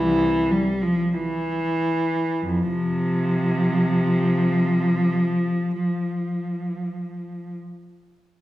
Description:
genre	classical, baroque-style suite movement for unaccompanied cello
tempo	free time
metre	none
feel	none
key	unclear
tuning	A4 = 440 Hz
part	warm cello	solo	0.0-7.5 s	C2 to G3	-20 LUFS	equal	none
room	wet recital hall reverb, RT60 1.5 s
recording	minimal, uncompressed stereo recording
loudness	-20 LUFS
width	side -15 dB against mid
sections	0.0-2.5 A section; 2.5-7.5 B section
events	slowing down 0.0-2.5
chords	none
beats	free time

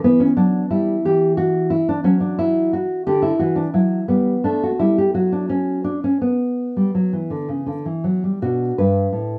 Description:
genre	classical, baroque-style dance for nylon-string guitar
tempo	53-60 BPM (dotted quarters)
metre	6/8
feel	rubato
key	B minor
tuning	A4 = 440 Hz
part	nylon-string guitar	solo	0.0-9.4 s	G2 to B4	-19 LUFS	equal	none
room	moderate studio reverb, RT60 0.6 s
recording	dark, warm production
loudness	-19 LUFS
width	mono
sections	0.0-8.4 A section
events	none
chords	0.0 Em; 1.1 N.C.; 3.1 Dadd9; 4.1 Gmaj13; 5.1 N.C.; 6.2 Bm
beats	| 0.04 1.05 | 2.05 3.06 | 4.09 5.14 | 6.22 7.32 | 8.42

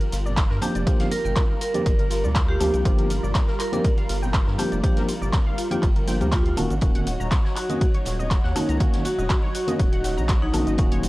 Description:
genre	deep house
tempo	121 BPM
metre	4/4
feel	straight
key	unclear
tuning	A4 = 439 Hz
part	soft string machine	sustained chords	0.0-11.1 s	Gb3 to Db5	-34 LUFS	right 1 dB	phaser, ensemble chorus, vintage 12-bit sampler grit, sidechain pumping
part	warbly dusty pluck	arpeggios	0.0-11.1 s	F4 to Bb5	-34 LUFS	left 1 dB	analog chorus, sidechain pumping, tape echo
part	deep house drum kit	drums	0.0-11.1 s	handclaps, hi-hat, shaker, woodblock	-31 LUFS	equal	overdrive
part	vintage drum kit	drums	0.0-11.1 s	ride cymbal, snare drum	-41 LUFS	left 1 dB	sidechain pumping on cymbals, high-pass filter on cymbals, high-pass filter on snare, high-pass filter on room
part	round analog bass	bass	0.1-11.1 s	Eb1 to G2	-26 LUFS	equal	sidechain pumping
part	congas and bongos	percussion	0.3-11.1 s	none	-36 LUFS	right 2 dB	none
part	electronic kick drum	drums	0.4-10.9 s	none	-21 LUFS	equal	overdrive
part	vibraphone with medium hard mallets	melody	0.6-10.6 s	Eb4 to Bb4	-29 LUFS	equal	tape echo
part	mellow tine electric piano	stabs	0.6-11.0 s	Eb3 to G4	-28 LUFS	equal	medium stereo tremolo, sidechain pumping, tape echo
room	little or no reverb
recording	dry, gritty hardware recording, cassette tape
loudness	-20 LUFS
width	side -19 dB against mid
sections	0.0-11.1 A section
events	none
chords	0.0 Gm7; 6.6 Ebm7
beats	0.37 | 0.87 1.37 1.86 2.36 | 2.85 3.35 3.85 4.34 | 4.84 5.33 5.83 6.32 | 6.82 7.32 7.81 8.31 | 8.80 9.30 9.79 10.29 | 10.79

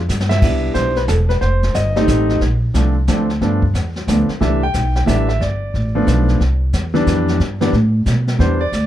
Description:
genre	jazz piano trio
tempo	181 BPM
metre	3/4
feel	swing 64% on 8ths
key	C major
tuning	A4 = 439 Hz
part	clear concert grand piano	melody	0.0-8.9 s	E3 to G5	-18 LUFS	equal	plate reverb
part	upright bass	bass	0.0-8.9 s	E1 to B2	-17 LUFS	equal	none
part	jazz brush drum kit	drums	0.1-8.9 s	brushed snare drum, crash cymbal, hi-hat, kick drum, snare drum	-22 LUFS	left 1 dB	none
room	light reverb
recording	dark, warm production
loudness	-14 LUFS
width	side -12 dB against mid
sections	0.4-8.4 A section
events	drum fill 0.1-0.4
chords	0.1 Em/G; 0.4 Cmaj7; 1.4 F7; 2.4 Bbmaj7; 3.4 G7; 4.4 C69; 5.4 G7; 6.4 Cmaj7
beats	0.09 | 0.42 0.76 1.09 | 1.42 1.75 2.08 | 2.42 2.75 3.08 | 3.41 3.74 4.08 | 4.41 4.74 5.07 | 5.41 5.74 6.07 | 6.40 6.74 7.07 | 7.40 7.73 8.06 | 8.40 8.73

